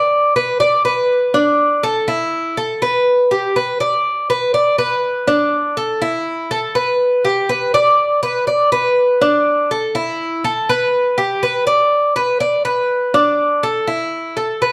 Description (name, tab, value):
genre	latin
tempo	122 BPM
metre	4/4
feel	straight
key	unclear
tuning	A4 = 441 Hz
part	Cuban tres	solo	0.0-14.7 s	D4 to D5	-16 LUFS	equal	none
room	moderate large studio reverb, RT60 1.2 s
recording	dark, warm production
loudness	-16 LUFS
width	mono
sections	0.0-6.0 A section; 6.0-14.7 A section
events	none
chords	none